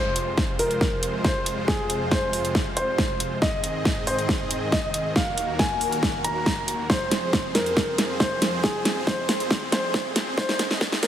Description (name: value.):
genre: heavy wobble dubstep.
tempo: 138 BPM.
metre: 4/4.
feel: half-time.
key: F minor.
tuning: A4 = 442 Hz.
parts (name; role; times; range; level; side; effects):
warm grand piano; melody; 0.0-11.1 s; Ab4 to Bb5; -27 LUFS; equal; dub echo.
supersaw chords; sustained chords; 0.0-11.1 s; F2 to Eb5; -30 LUFS; equal; sidechain pumping.
dubstep drum kit; drums; 0.2-11.1 s; hi-hat, snare drum; -25 LUFS; equal; none.
electronic kick drum; drums; 0.4-10.9 s; none; -28 LUFS; equal; none.
riser; sound effects; 9.7-11.1 s; none; -42 LUFS; right 2 dB; none.
room: moderate lush hall reverb, RT60 2.1 s.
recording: heavily compressed radio sound, high-pass filter.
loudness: -21 LUFS.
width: side -10 dB against mid.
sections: 0.0-11.1 A section.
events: build-up 0.0-11.1; drum fill 0.0-11.1.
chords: 0.0 Fm; 3.4 Ab; 5.2 Ebm; 6.9 Fm; 10.4 Ab.